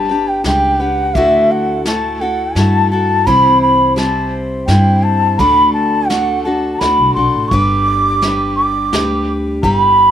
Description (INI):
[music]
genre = acoustic folk duo or small band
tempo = 85 BPM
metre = 3/4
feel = straight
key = G major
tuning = A4 = 440 Hz
[part]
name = bansuri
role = melody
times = 0.0-10.1 s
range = E5 to D6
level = -13 LUFS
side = equal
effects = none
[part]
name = picked steel-string acoustic guitar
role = accompaniment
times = 0.0-10.1 s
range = C3 to C5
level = -18 LUFS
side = left 1 dB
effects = none
[part]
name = upright bass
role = bass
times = 0.0-10.1 s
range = G1 to G2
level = -18 LUFS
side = equal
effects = none
[part]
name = soft brush drum kit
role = drums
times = 0.4-9.8 s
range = hi-hat, kick drum, snare drum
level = -23 LUFS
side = equal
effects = none
[sound]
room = little or no reverb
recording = none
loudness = -11 LUFS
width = side -10 dB against mid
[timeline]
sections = 0.0-10.1 A section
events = none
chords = 0.0 G; 1.2 Dadd9; 3.3 C; 5.4 D; 7.5 G